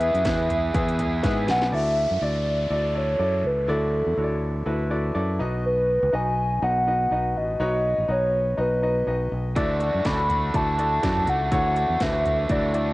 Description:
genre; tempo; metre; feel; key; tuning
piano-driven pop; 122 BPM; 4/4; swing 56% on 16ths; unclear; A4 = 439 Hz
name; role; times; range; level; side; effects
hollow clarinet-like synth lead; melody; 0.0-12.9 s; A4 to B5; -24 LUFS; equal; chorus, cassette tape
bright concert grand piano; accompaniment; 0.0-12.9 s; B2 to E5; -29 LUFS; left 1 dB; cassette tape
overdriven electric guitar; riff; 0.0-1.7, 9.6-12.9 s; D3 to G#4; -30 LUFS; right 2 dB; cassette tape
fingered electric bass; bass; 0.0-12.9 s; A1 to G#2; -26 LUFS; equal; none
house drum kit; drums; 0.0-1.7, 9.6-12.9 s; hi-hat, kick drum, snare drum, toms; -28 LUFS; equal; cassette tape
downlifter; sound effects; 1.7-5.6 s; none; -40 LUFS; equal; none
room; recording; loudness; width
light reverb; home recording on cassette; -21 LUFS; side -19 dB against mid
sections
0.0-1.7 A section; 1.7-12.9 B section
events
drum fill 1.2-1.7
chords
0.0 E; 1.7 Dadd9; 5.4 B; 9.6 Dadd9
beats
0.26 0.74 1.23 | 1.72 2.21 2.70 3.19 | 3.68 4.17 4.67 5.16 | 5.64 6.13 6.62 7.12 | 7.61 8.10 8.58 9.07 | 9.56 10.05 10.54 11.03 | 11.52 12.01 12.50

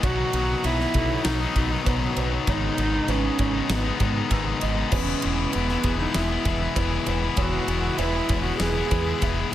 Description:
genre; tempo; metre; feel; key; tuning
post-rock; 98 BPM; 4/4; straight; E major; A4 = 440 Hz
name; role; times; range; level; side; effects
dark cello; melody; 0.0-9.5 s; B3 to G#4; -28 LUFS; right 3 dB; slapback echo
soft additive organ-like pad; sustained chords; 0.0-9.5 s; B4 to F#6; -40 LUFS; right 3 dB; ensemble chorus, built-in reverb
felt-muted upright piano; arpeggios; 0.0-9.5 s; G#4 to E6; -37 LUFS; right 11 dB; slapback echo
cranked stack guitar; riff; 0.0-9.5 s; G#2 to E4; -26 LUFS; left 6 dB; overdrive
growling fingered electric bass; bass; 0.0-9.5 s; E1 to G#2; -27 LUFS; equal; overdrive
huge arena drum kit; drums; 0.0-9.4 s; crash cymbal, kick drum, ride cymbal, snare drum; -28 LUFS; equal; none
room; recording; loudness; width
small room ambience; none; -21 LUFS; side -12 dB against mid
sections
0.0-9.5 A section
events
none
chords
0.0 Badd9; 2.5 G#m; 4.9 E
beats
| 0.03 0.64 1.25 1.86 | 2.47 3.09 3.70 4.31 | 4.92 5.54 6.15 6.76 | 7.38 7.99 8.61 9.22

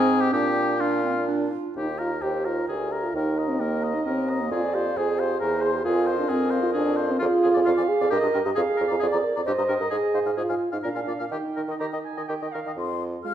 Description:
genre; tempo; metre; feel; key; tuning
quick classical-period movement for wind quintet; 121-136 BPM; 3/4; rubato; Eb major; A4 = 439 Hz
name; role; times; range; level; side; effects
mellow hollow concert flute; melody; 0.0-13.3 s; Bb4 to F6; -34 LUFS; left 8 dB; none
warm oboe; second line; 0.0-13.3 s; F4 to F5; -31 LUFS; left 4 dB; none
mellow French horn; accompaniment; 0.0-13.3 s; Ab3 to C5; -25 LUFS; right 1 dB; none
mellow clarinet; accompaniment; 0.0-13.3 s; C4 to Bb5; -29 LUFS; right 4 dB; none
warm bassoon; bass; 0.0-13.2 s; D2 to Eb3; -28 LUFS; right 2 dB; none
room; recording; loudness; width
wet recital hall reverb, RT60 1.5 s; none; -22 LUFS; side -10 dB against mid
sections
0.0-1.8 A section; 1.8-12.8 B section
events
none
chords
0.3 Bb; 1.8 Eb; 2.7 Bb7/D; 3.1 Eb; 4.5 Fm; 5.4 C7/E; 5.9 Fm; 7.2 Ddim/F; 8.1 Eb/G; 8.6 Bb7/F; 9.5 Eb/G; 9.9 Fm/Ab; 10.8 Bb7; 11.3 Eb; 12.8 Fm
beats
| 0.33 0.81 1.29 | 1.77 2.23 2.69 | 3.15 3.60 4.06 | 4.51 4.97 5.42 | 5.86 6.30 6.75 | 7.22 7.67 8.11 | 8.56 9.01 9.47 | 9.92 10.38 10.84 | 11.32 11.80 12.29 | 12.78 13.25

